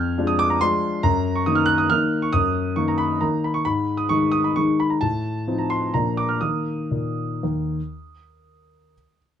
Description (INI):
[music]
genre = classical, piano waltz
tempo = 115-144 BPM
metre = 3/4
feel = rubato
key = Eb minor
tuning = A4 = 440 Hz
[part]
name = warm grand piano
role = solo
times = 0.0-9.2 s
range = Eb2 to Gb6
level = -19 LUFS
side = equal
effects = none
[sound]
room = little or no reverb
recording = close, detailed microphones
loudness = -19 LUFS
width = side -9 dB against mid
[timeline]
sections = 0.0-9.4 A section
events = none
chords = 0.0 Ddim/F; 1.0 Ebm/Gb; 3.7 Ab5; 5.0 F7/A; 5.9 Bb; 6.4 Eb5